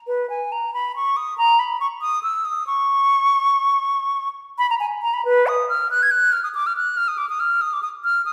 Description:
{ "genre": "classical, baroque-style fantasia for unaccompanied flute", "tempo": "93 BPM (dotted quarters)", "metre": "12/8", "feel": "rubato", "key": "Eb minor from 5.3 s", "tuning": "A4 = 439 Hz", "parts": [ { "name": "hollow concert flute", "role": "solo", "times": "0.1-8.3 s", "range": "Cb5 to Ab6", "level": "-20 LUFS", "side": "equal", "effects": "none" } ], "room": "wet recital hall reverb, RT60 1.4 s", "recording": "recorded in a church or concert hall", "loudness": "-20 LUFS", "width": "mono", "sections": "0.0-8.3 A section", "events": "none", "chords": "none" }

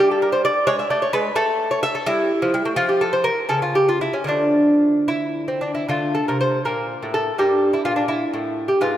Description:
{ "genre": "classical, baroque-style dance for lute", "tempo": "72-88 BPM (dotted quarters)", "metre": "6/8", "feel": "rubato", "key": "D minor", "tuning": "A4 = 441 Hz", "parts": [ { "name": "lute", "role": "solo", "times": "0.0-9.0 s", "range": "G2 to E5", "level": "-17 LUFS", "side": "equal", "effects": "none" } ], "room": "wet plate reverb, RT60 2.8 s", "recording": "dreamy mix soaked in reverb", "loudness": "-18 LUFS", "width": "side -12 dB against mid", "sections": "0.0-5.9 A section; 5.9-9.0 A section", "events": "none", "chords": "0.0 N.C.; 0.7 G#madd11; 1.3 N.C.; 2.1 A5/G; 2.8 N.C.; 4.3 Dm; 5.9 D5; 6.6 N.C.; 7.4 Edim/G" }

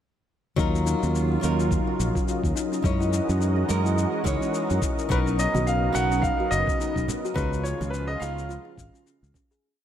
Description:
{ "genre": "sunset chillout", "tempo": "106 BPM", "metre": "4/4", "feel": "swing 57% on 16ths", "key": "Eb minor", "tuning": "A4 = 440 Hz", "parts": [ { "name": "flamenco guitar", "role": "accompaniment", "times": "0.6-8.8 s", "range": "Fb3 to Eb5", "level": "-30 LUFS", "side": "moving between left 7 dB and right 8 dB", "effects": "auto-pan, digital delay" }, { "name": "lush unison pad", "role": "sustained chords", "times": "0.6-9.6 s", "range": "Db3 to Eb5", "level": "-32 LUFS", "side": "equal", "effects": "chorus" }, { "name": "kalimba", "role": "arpeggios", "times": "0.6-9.6 s", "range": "Db4 to Ab4", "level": "-32 LUFS", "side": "left 3 dB", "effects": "digital delay" }, { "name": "fingered electric bass", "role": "bass", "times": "0.6-9.3 s", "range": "F#1 to Gb2", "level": "-26 LUFS", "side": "equal", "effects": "none" }, { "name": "electronic kick drum", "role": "drums", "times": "0.6-9.5 s", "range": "none", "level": "-28 LUFS", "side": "equal", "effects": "small room ambience" }, { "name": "shaker", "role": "drums", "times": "0.6-9.6 s", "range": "none", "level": "-38 LUFS", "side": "left 8 dB", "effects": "small room ambience" }, { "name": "clear concert grand piano", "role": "melody", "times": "5.1-9.3 s", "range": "B4 to F#5", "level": "-28 LUFS", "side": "equal", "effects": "digital delay" }, { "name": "congas", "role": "percussion", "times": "5.5-9.5 s", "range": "none", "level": "-32 LUFS", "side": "right 2 dB", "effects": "none" } ], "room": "light reverb", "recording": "none", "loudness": "-22 LUFS", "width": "side -10 dB against mid", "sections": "0.6-9.6 groove", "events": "fade-out 6.6-9.6", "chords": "0.6 Ebm9; 2.8 Gb13; 5.1 Bmaj9; 7.4 Db7" }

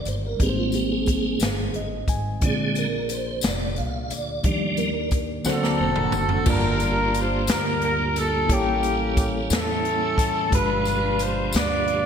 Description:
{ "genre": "slow gospel", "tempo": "59 BPM (dotted quarters)", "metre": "6/8", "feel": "straight", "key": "unclear", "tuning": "A4 = 440 Hz", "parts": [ { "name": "mellow tine electric piano", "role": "accompaniment", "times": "0.0-12.1 s", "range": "G2 to B5", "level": "-29 LUFS", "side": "left 1 dB", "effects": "medium stereo tremolo" }, { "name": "tonewheel organ", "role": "sustained chords", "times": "0.0-12.1 s", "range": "B2 to F5", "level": "-27 LUFS", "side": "right 2 dB", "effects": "chorus vibrato, fast rotary speaker" }, { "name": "upright bass", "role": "bass", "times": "0.0-12.1 s", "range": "Fb1 to E2", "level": "-30 LUFS", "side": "equal", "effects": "none" }, { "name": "swinging big-band drum kit", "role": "drums", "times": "0.1-12.0 s", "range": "crash cymbal, hi-hat, kick drum, snare drum, toms", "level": "-26 LUFS", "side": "equal", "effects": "none" }, { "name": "tambourine", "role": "percussion", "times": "0.1-11.8 s", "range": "none", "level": "-37 LUFS", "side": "left 8 dB", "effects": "none" }, { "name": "mellow horn section", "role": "melody", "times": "5.5-12.1 s", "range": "Bb3 to D5", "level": "-24 LUFS", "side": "equal", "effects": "ping-pong delay" }, { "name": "clean electric guitar", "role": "second line", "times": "5.5-6.6 s", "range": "D4 to F#5", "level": "-32 LUFS", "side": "right 5 dB", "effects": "ensemble chorus" } ], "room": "moderate lush hall reverb, RT60 2.0 s, studio reverb", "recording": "bright 1980s-style digital production", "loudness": "-20 LUFS", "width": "side -7 dB against mid", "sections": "0.0-6.5 A section; 6.5-12.1 B section", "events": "tonewheel organ solo 0.0-6.5; tine electric piano fill 1.4-2.4; drum fill 5.5-6.5", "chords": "0.4 Abmaj7; 2.4 Bb7; 4.4 Ebmaj7; 5.5 D7b13; 6.5 Gm9; 8.5 A7b9; 10.5 G7b9" }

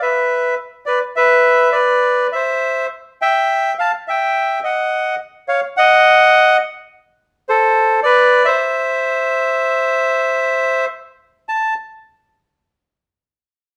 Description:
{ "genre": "tango", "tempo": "105 BPM", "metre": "4/4", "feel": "rubato", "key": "unclear", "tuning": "A4 = 440 Hz", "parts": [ { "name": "bandoneon", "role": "solo", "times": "0.0-11.7 s", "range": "A4 to A5", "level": "-15 LUFS", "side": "equal", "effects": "none" } ], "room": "moderate large studio reverb, RT60 0.8 s", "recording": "band playing live in one room", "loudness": "-16 LUFS", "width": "mono", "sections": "0.0-11.5 A section; 11.5-13.7 B section", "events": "none", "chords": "0.0 N.C.; 2.3 C; 4.6 C#sus4 (rootless); 6.9 N.C.; 8.0 E5; 9.2 N.C." }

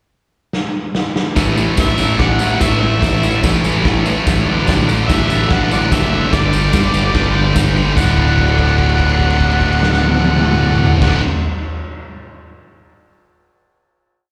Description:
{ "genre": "garage rock duo or trio", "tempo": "146 BPM", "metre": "4/4", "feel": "straight", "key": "D major", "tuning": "A4 = 440 Hz", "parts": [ { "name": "raw garage drum kit", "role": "drums", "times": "0.5-11.1 s", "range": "crash cymbal, kick drum, snare drum, toms", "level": "-20 LUFS", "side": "equal", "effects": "none" }, { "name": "combo organ", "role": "sustained chords", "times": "1.4-11.2 s", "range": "E4 to D5", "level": "-29 LUFS", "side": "equal", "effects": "lush chorus" }, { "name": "thick fuzz guitar", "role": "riff", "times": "1.4-11.2 s", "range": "D2 to A3", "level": "-19 LUFS", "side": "equal", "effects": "distortion" }, { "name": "fuzz fingered electric bass", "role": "bass", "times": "1.4-11.2 s", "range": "D1 to A1", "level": "-20 LUFS", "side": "equal", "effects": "overdrive" }, { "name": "tambourine", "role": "percussion", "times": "1.4-8.2 s", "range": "none", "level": "-34 LUFS", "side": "equal", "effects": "none" }, { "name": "overdriven harmonica", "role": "melody", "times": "1.8-11.2 s", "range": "D5 to F#5", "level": "-23 LUFS", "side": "equal", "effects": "none" } ], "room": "small room reverb", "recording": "live gig heard through the venue's PA, recital hall reverb", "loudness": "-14 LUFS", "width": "mono", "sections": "0.0-1.4 pickup bar; 1.4-8.0 pre-chorus; 8.0-11.3 final chord", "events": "drum fill 0.5-1.4; held note 8.0-11.0", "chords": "0.0 N.C.; 1.4 A; 4.5 D/A; 6.3 G; 8.0 D" }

